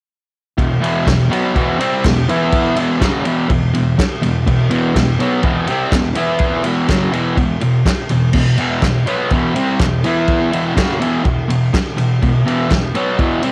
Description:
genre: garage rock duo or trio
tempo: 124 BPM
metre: 4/4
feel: straight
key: E minor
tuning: A4 = 442 Hz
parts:
  - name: fuzz guitar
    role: riff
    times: 0.6-13.5 s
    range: E2 to E4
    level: -17 LUFS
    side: equal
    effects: distortion, cassette tape
  - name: vintage drum kit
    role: drums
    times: 0.6-13.5 s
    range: crash cymbal, kick drum, ride cymbal, snare drum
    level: -21 LUFS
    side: equal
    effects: cassette tape
  - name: group handclap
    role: percussion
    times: 1.1-12.8 s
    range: none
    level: -30 LUFS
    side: equal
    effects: none
room: small room reverb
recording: home recording on cassette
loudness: -16 LUFS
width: mono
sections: 0.6-13.5 A section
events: none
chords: 0.6 E5

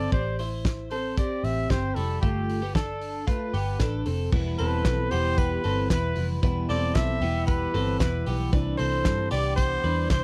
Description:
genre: jangly indie pop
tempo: 114 BPM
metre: 4/4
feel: straight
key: unclear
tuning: A4 = 440 Hz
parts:
  - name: warm trumpet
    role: melody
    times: 0.0-10.2 s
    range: G4 to E5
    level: -32 LUFS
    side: equal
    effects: none
  - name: twelve-string electric guitar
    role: arpeggios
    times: 0.0-10.2 s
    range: G3 to D5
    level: -34 LUFS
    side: equal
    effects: lush chorus
  - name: vintage muted picked electric bass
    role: bass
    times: 0.0-10.2 s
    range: E1 to G2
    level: -31 LUFS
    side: equal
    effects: none
  - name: loose indie drum kit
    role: drums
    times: 0.1-10.2 s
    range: crash cymbal, hi-hat, kick drum, snare drum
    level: -29 LUFS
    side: equal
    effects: none
  - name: fingerpicked steel-string acoustic guitar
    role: accompaniment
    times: 4.3-10.2 s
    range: E2 to E4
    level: -34 LUFS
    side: equal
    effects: none
  - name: glockenspiel with brass mallets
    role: second line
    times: 4.6-10.2 s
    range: B5 to E6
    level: -43 LUFS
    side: equal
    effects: none
  - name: group handclap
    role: percussion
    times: 4.9-10.2 s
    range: none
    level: -45 LUFS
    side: equal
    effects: none
room: small room ambience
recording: dry, close 1970s-style studio recording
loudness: -26 LUFS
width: mono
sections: 0.0-4.3 A section; 4.3-10.2 B section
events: none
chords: 0.1 Am7; 2.2 Gadd9; 4.3 Em; 8.5 Cadd9

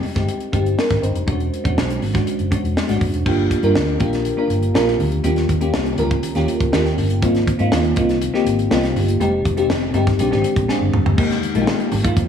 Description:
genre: polished 1980s jazz-funk pop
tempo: 121 BPM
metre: 4/4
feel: straight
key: unclear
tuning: A4 = 439 Hz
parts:
  - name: bell-like FM electric piano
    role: accompaniment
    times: 0.0-12.3 s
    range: G3 to C5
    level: -19 LUFS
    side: left 1 dB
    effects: phaser, lush chorus
  - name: tight funk drum kit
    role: drums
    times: 0.0-12.3 s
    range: crash cymbal, hi-hat, kick drum, snare drum, toms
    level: -22 LUFS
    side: equal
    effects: gated reverb
  - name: vintage muted fingered electric bass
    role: bass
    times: 0.2-12.3 s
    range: E1 to Ab2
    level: -21 LUFS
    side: equal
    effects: none
  - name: congas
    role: percussion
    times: 3.3-12.3 s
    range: none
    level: -32 LUFS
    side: right 6 dB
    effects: none
room: light reverb, studio ambience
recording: small room ambience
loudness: -16 LUFS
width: side -8 dB against mid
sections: 0.0-3.3 A section; 3.3-11.2 B section; 11.2-12.3 C section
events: drum fill 10.7-11.2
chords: 0.0 Fm7 (rootless); 1.3 E13; 3.3 Gm7; 5.2 Eb7; 7.2 Ab69; 9.2 Fm9; 10.2 Bb13; 11.2 Fm11

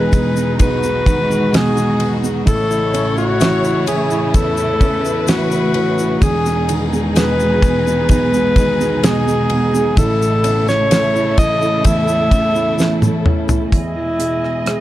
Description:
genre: pop ballad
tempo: 64 BPM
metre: 4/4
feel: straight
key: E major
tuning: A4 = 440 Hz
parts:
  - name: breathy alto saxophone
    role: melody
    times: 0.0-14.8 s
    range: E4 to E5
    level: -18 LUFS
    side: left 1 dB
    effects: none
  - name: felt-muted upright piano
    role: accompaniment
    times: 0.0-14.8 s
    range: E1 to E4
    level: -19 LUFS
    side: right 3 dB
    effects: none
  - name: warm studio string section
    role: sustained chords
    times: 0.0-14.8 s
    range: B2 to D#5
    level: -22 LUFS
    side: left 1 dB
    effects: none
  - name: electric guitar at the edge of break-up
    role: arpeggios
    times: 0.0-14.3 s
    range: E2 to G#4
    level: -23 LUFS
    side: left 2 dB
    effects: tape echo
  - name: damped 70s drum kit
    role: drums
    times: 0.1-14.8 s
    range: hi-hat, kick drum, ride cymbal, rim click, snare drum, toms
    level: -18 LUFS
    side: equal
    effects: none
  - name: tube shaker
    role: percussion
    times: 0.1-13.7 s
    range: none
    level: -32 LUFS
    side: left 6 dB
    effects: none
room: small room ambience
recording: dark, warm production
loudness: -13 LUFS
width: side -14 dB against mid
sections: 0.0-13.7 A section; 13.7-14.8 B section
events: drum fill 12.8-13.7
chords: 0.0 Emaj7; 2.5 A; 6.2 Emaj7; 10.0 A; 13.7 Emaj7

